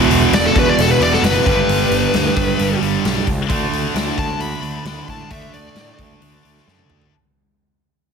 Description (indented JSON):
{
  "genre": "hard rock",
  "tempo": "132 BPM",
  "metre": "4/4",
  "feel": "straight",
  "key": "unclear",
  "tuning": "A4 = 440 Hz",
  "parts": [
    { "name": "cranked stack guitar", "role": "riff", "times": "0.0-7.1 s", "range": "E2 to D4", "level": "-20 LUFS", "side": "right 12 dB", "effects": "overdrive" },
    { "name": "scooped high-gain guitar", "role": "riff", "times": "0.0-7.1 s", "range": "E2 to D4", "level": "-22 LUFS", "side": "left 10 dB", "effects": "distortion" },
    { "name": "fuzz picked electric bass", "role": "bass", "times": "0.0-7.0 s", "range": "E1 to A2", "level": "-22 LUFS", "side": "equal", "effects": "overdrive" },
    { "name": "huge arena drum kit", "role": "drums", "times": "0.1-7.1 s", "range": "hi-hat, kick drum, snare drum, toms", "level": "-21 LUFS", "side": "left 1 dB", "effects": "none" },
    { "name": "smooth overdriven lead guitar", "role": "melody", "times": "0.3-6.0 s", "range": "A4 to B5", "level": "-20 LUFS", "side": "left 3 dB", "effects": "analog delay" }
  ],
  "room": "moderate large studio reverb, RT60 0.8 s, small room reverb",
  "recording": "heavily compressed radio sound",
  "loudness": "-14 LUFS",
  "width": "side -6 dB against mid",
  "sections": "0.0-7.1 A section",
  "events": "fade-out 0.0-7.1; lead electric guitar solo 0.0-7.1; drum fill 6.7-7.1",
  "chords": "0.0 E5; 1.5 G; 3.5 D5"
}